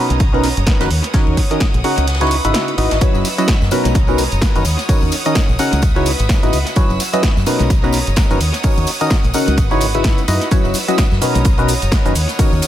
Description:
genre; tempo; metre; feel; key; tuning
piano house; 128 BPM; 4/4; swing 58% on 16ths; unclear; A4 = 440 Hz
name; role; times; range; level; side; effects
clear symphonic violin section; sustained chords; 0.0-12.7 s; B4 to E6; -26 LUFS; equal; sidechain pumping
percussive organ stab; riff; 0.0-12.7 s; B2 to F#5; -18 LUFS; equal; chorus, phaser, sidechain pumping, dub echo
deep dub fingered electric bass; bass; 0.1-12.6 s; F#1 to F#2; -18 LUFS; equal; sidechain pumping
punchy analog drum machine; drums; 0.1-12.7 s; hi-hat, shaker, snare drum; -23 LUFS; right 1 dB; overdrive, dub echo
compact cocktail drum kit; drums; 0.2-12.7 s; hi-hat, ride cymbal, snare drum; -31 LUFS; right 2 dB; high-pass filter on cymbals, high-pass filter on hats, high-pass filter on snare, high-pass filter on room, dub echo
electronic kick drum; drums; 0.2-12.5 s; none; -15 LUFS; equal; none
tambourine and congas; percussion; 3.0-12.7 s; none; -28 LUFS; left 6 dB; dub echo
room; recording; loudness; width
light reverb; echo-heavy mix; -13 LUFS; side -12 dB against mid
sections
0.0-12.7 A section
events
kick drops out 2.1-3.0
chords
0.0 Bmaj9; 0.9 D#m7; 2.1 C#m11; 3.0 F#7sus4; 3.7 Bmaj9; 4.7 D#m7; 5.8 C#m11; 6.8 F#7sus4; 7.5 Bmaj9; 8.4 D#m7; 9.6 C#m11; 10.5 F#7sus4; 11.2 Bmaj9; 12.2 D#m7

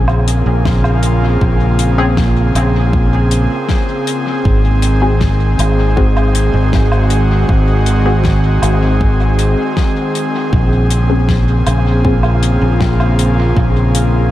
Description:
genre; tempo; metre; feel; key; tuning
ambient dub; 79 BPM; 4/4; straight; Bb minor; A4 = 438 Hz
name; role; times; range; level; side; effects
airy breathy pad; sustained chords; 0.0-14.3 s; Db3 to Ab4; -16 LUFS; equal; chorus
filtered dub chord stab; stabs; 0.0-12.2 s; C4 to Ab4; -23 LUFS; left 3 dB; none
fingered electric bass; bass; 0.0-14.3 s; Ab1 to Bb1; -12 LUFS; equal; none
deep reggae drum kit; drums; 0.1-14.1 s; hi-hat, snare drum, woodblock; -24 LUFS; left 2 dB; small room reverb, dub echo
electronic kick drum; drums; 0.7-13.7 s; none; -16 LUFS; equal; small room reverb
room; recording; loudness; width
small room ambience; none; -11 LUFS; side -14 dB against mid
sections
0.0-14.3 A section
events
none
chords
0.0 Bbm9; 4.5 Ab7; 10.5 Bbm9

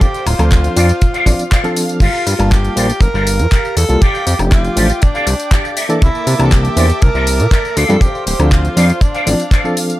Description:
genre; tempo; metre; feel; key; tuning
nu-disco, nu disco; 120 BPM; 4/4; straight; unclear; A4 = 440 Hz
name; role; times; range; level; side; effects
breathy tenor saxophone; melody; 0.0-9.8 s; D4 to Bb4; -21 LUFS; right 1 dB; tape echo
reed electric piano; accompaniment; 0.0-10.0 s; E3 to A5; -19 LUFS; equal; fast tremolo, sidechain pumping
lush unison pad; sustained chords; 0.0-10.0 s; Bb3 to D6; -27 LUFS; right 1 dB; chorus, sidechain pumping
electric guitar with an envelope filter; riff; 0.0-9.8 s; G4 to F5; -21 LUFS; left 1 dB; ensemble chorus
house drum kit; drums; 0.0-10.0 s; crash cymbal, handclaps, hi-hat, tambourine, woodblock; -22 LUFS; left 2 dB; small room ambience
kick drum; drums; 0.0-9.6 s; none; -11 LUFS; equal; small room ambience
fat analog bass; bass; 0.3-9.3 s; D1 to C3; -14 LUFS; equal; tube saturation
room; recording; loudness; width
little or no reverb; none; -11 LUFS; side -16 dB against mid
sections
0.0-10.0 A section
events
none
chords
0.0 Dm7; 2.0 Gm9; 4.0 F69; 5.8 C13; 7.8 Dm7

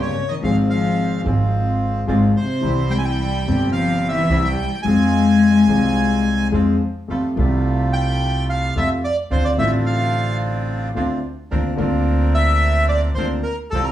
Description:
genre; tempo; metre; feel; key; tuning
tango; 108 BPM; 4/4; rubato; F minor, F major from 7.1 s; A4 = 441 Hz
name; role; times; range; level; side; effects
bandoneon; melody; 0.0-13.9 s; A4 to Ab5; -23 LUFS; right 1 dB; none
dark cello; second line; 0.0-6.5 s; C3 to Ab3; -20 LUFS; left 3 dB; analog delay
warm concert grand piano; accompaniment; 0.0-13.9 s; G1 to Ab4; -21 LUFS; left 2 dB; none
bandoneon; stabs; 0.0-13.9 s; G3 to Bb4; -29 LUFS; right 2 dB; none
upright bass; bass; 0.0-13.9 s; G1 to F2; -22 LUFS; right 1 dB; none
room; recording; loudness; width
wet studio reverb, RT60 0.7 s; heard from further back in the room, small room ambience; -16 LUFS; side -12 dB against mid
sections
0.0-7.1 A section; 7.1-13.9 B section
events
none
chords
0.4 Fm/Ab; 2.6 C; 4.9 Fm; 7.1 Fadd9; 9.3 Dm7; 11.5 Bbadd9/D

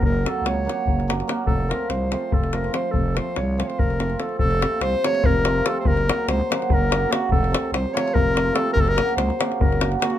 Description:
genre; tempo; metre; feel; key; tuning
balkan folk, Balkan wedding band; 289 BPM (eighths); 7/8; straight; unclear; A4 = 441 Hz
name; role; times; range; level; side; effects
warm clarinet; melody; 0.0-10.2 s; Gb4 to Db5; -24 LUFS; left 1 dB; slapback echo
cimbalom; accompaniment; 0.0-10.2 s; C3 to Gb4; -26 LUFS; right 4 dB; none
growling FM bass; bass; 0.0-10.0 s; F1 to Db2; -24 LUFS; right 1 dB; none
davul; percussion; 0.0-10.2 s; none; -23 LUFS; left 2 dB; none
room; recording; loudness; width
light reverb; close, detailed microphones; -19 LUFS; side -11 dB against mid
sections
0.0-4.4 A section; 4.4-10.2 B section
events
none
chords
0.0 Gb; 1.5 F; 5.8 Gb; 7.3 F; 8.8 Gb

